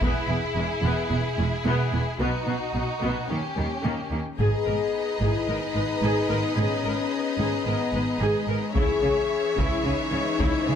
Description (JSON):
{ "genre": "cinematic, epic orchestral film score", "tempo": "110 BPM", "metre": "4/4", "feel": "straight", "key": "G# minor from 4.4 s", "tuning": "A4 = 441 Hz", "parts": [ { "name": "warm symphonic violin section", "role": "melody", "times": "0.0-10.8 s", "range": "F#4 to E5", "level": "-33 LUFS", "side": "left 4 dB", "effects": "none" }, { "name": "warm symphonic violin section", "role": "second line", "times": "0.0-10.8 s", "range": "C#4 to C#5", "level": "-32 LUFS", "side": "equal", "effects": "none" }, { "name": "rich symphonic viola section", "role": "accompaniment", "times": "0.0-10.7 s", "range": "F#3 to C#5", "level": "-31 LUFS", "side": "right 1 dB", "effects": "none" }, { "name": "rich symphonic cello section", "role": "bass", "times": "0.0-10.8 s", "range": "E2 to D#3", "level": "-30 LUFS", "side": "right 2 dB", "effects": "none" }, { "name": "warm symphonic double bass section", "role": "bass", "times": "0.0-10.8 s", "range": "E1 to D#2", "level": "-30 LUFS", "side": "right 2 dB", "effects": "none" }, { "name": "taiko ensemble", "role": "drums", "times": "0.0-1.1, 4.4-5.5, 8.8-10.8 s", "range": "none", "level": "-29 LUFS", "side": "equal", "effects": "none" }, { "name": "clear symphonic string section", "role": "sustained chords", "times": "4.4-10.8 s", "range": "E3 to A#5", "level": "-33 LUFS", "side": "left 1 dB", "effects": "none" }, { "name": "dark French horn section", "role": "sustained chords", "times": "4.4-10.8 s", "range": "G#3 to G#4", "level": "-27 LUFS", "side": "left 6 dB", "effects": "none" } ], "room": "light reverb", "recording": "close, detailed microphones", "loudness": "-23 LUFS", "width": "side -8 dB against mid", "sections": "0.0-4.4 A section; 4.4-10.8 B section", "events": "build-up 0.0-4.4", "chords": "0.0 E; 2.2 B; 3.3 D#7; 4.4 G#madd9; 8.8 C#m" }